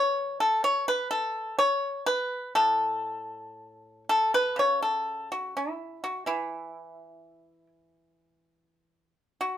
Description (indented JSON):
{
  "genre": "chinese traditional, Chinese solo plucked strings",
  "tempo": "59-64 BPM",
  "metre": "2/4",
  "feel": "rubato",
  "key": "A gong mode",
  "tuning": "A4 = 440 Hz",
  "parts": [
    { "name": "pipa", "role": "solo", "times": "0.0-9.6 s", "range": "A2 to C#5", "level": "-25 LUFS", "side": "left 1 dB", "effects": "none" }
  ],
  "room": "light reverb",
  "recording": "band playing live in one room",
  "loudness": "-25 LUFS",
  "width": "side -11 dB against mid",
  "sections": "0.0-4.6 A section; 4.6-9.6 B section",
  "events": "none",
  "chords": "none",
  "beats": "| 0.67 1.61 | 2.58 3.58 | 4.58 5.57 | 6.54 7.48 | 8.42 9.39"
}